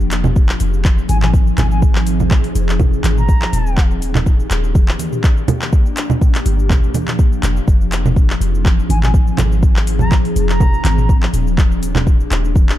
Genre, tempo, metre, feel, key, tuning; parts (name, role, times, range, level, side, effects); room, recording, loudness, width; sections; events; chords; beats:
afro house; 123 BPM; 4/4; swing 54% on 16ths; F dorian; A4 = 441 Hz
ethereal airy pad; sustained chords; 0.0-12.8 s; Eb3 to Ab4; -22 LUFS; left 1 dB; ensemble chorus, built-in reverb, phaser, sidechain pumping
warm 808-style bass; bass; 0.0-12.7 s; Eb1 to Ab1; -18 LUFS; equal; sidechain pumping
afro-pop drum kit; drums; 0.0-12.8 s; handclaps, hi-hat, shaker, toms; -23 LUFS; equal
congas; percussion; 0.2-12.7 s; -20 LUFS; right 3 dB
electronic kick drum; drums; 0.4-12.7 s; -13 LUFS; equal
silver concert flute; melody; 1.1-3.8, 8.9-11.2 s; Ab5 to Bb5; -26 LUFS; equal; ping-pong delay
digital ambience; dark, warm production; -12 LUFS; side -13 dB against mid
0.0-12.8 A section
0.0 Fm7; 3.8 Ebmaj7; 5.7 Gm7; 7.7 Fm7; 11.6 Ebmaj7
0.36 0.85 1.33 | 1.82 2.31 2.80 3.29 | 3.77 4.26 4.75 5.24 | 5.73 6.21 6.70 7.19 | 7.68 8.16 8.65 9.14 | 9.63 10.12 10.60 11.09 | 11.58 12.07 12.55